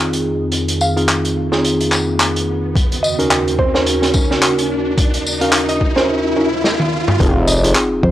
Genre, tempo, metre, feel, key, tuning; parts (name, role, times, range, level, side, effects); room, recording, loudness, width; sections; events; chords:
glitch hop; 108 BPM; 4/4; swing 57% on 16ths; F phrygian; A4 = 440 Hz
warbly tape-like pad; sustained chords; 0.0-8.1 s; Eb2 to Ab4; -22 LUFS; right 2 dB; chorus, built-in reverb, sidechain pumping
tine electric piano; stabs; 0.0-8.1 s; C4 to Bb4; -19 LUFS; equal; overdrive, sidechain pumping, low-pass filter, analog delay
riser and sub drop; sound effects; 0.5-8.1 s; -24 LUFS; equal
vintage drum kit; drums; 0.1-7.9 s; handclaps, hi-hat, snare drum, tambourine, toms; -18 LUFS; equal
woody wave-folded pluck; melody; 0.8-8.1 s; C5 to F5; -22 LUFS; right 1 dB; chorus, analog delay
electronic kick drum; drums; 2.8-8.1 s; -16 LUFS; equal; overdrive
gritty driven synth bass; bass; 7.2-7.7 s; F1; -15 LUFS; equal; distortion, overdrive
fingered electric bass; bass; 8.0-8.1 s; F2; -12 LUFS; equal; tube saturation
light reverb; cassette tape; -13 LUFS; side -13 dB against mid
0.0-7.2 A section
build-up 0.0-7.2; riser 0.5-7.2; drum fill 6.6-7.2; impact 7.2-8.1
0.0 Fm7; 2.8 Ebm7; 7.2 Fm7